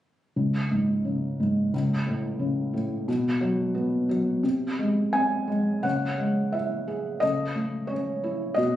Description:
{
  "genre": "classical, lyrical solo piano",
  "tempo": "88 BPM",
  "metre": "4/4",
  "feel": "rubato",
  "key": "C# minor",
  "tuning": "A4 = 440 Hz",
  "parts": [
    { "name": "felt-muted upright piano", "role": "solo", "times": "0.4-8.8 s", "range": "C#2 to G#5", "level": "-24 LUFS", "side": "equal", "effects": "none" }
  ],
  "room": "light reverb",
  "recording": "recorded on a phone in the room, studio reverb, compression",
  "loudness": "-24 LUFS",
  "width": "side -12 dB against mid",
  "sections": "0.4-5.8 A section; 5.8-8.8 B section",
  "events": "none",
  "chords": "0.4 C#5; 1.7 A/C#; 3.1 B5; 4.4 G#/B#; 5.8 C#m; 7.2 A/C#",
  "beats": "| 0.36 1.05 1.73 2.40 | 3.08 3.75 4.44 5.14 | 5.84 6.54 7.22 7.90 | 8.58"
}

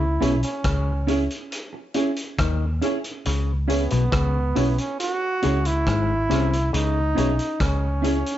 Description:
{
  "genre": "roots reggae",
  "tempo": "69 BPM",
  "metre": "4/4",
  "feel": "straight",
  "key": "C# minor",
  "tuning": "A4 = 442 Hz",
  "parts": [
    { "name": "clear trombone", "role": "melody", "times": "0.0-8.4 s", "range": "B3 to F#4", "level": "-26 LUFS", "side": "right 2 dB", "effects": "tape echo" },
    { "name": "auto-wah clav", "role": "riff", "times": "0.0-7.9 s", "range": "G#2 to D#3", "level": "-29 LUFS", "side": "left 5 dB", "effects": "none" },
    { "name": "vintage muted fingered electric bass", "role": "bass", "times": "0.0-8.2 s", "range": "G#1 to D#2", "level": "-23 LUFS", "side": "equal", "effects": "none" },
    { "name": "clean electric guitar", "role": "accompaniment", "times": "0.2-8.2 s", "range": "C#4 to G#4", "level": "-27 LUFS", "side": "right 6 dB", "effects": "tape echo" },
    { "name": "dark upright piano", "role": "stabs", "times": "0.2-8.2 s", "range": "C#4 to C#5", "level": "-28 LUFS", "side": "left 4 dB", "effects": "none" },
    { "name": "vintage drum kit", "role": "drums", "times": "0.2-8.4 s", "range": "hi-hat, kick drum, rim click", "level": "-30 LUFS", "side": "equal", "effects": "dub echo" }
  ],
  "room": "light reverb",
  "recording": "nothing above 7.7 kHz",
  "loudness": "-20 LUFS",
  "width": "side -12 dB against mid",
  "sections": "0.0-8.4 A section",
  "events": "none",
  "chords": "0.0 C#m",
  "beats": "0.65 1.52 2.39 | 3.26 4.12 5.00 5.86 | 6.73 7.60"
}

